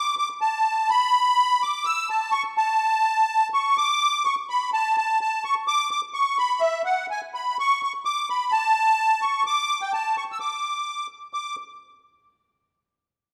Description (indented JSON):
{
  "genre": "alpine folk",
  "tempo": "126 BPM",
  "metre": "2/4",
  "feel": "straight",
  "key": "D major",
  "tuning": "A4 = 440 Hz",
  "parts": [
    { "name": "musette accordion", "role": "solo", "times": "0.0-11.6 s", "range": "E5 to E6", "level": "-23 LUFS", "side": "equal", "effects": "none" }
  ],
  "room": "wet recital hall reverb, RT60 1.7 s",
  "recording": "none",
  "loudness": "-23 LUFS",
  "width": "mono",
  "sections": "0.0-11.3 A section",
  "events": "none",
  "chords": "none"
}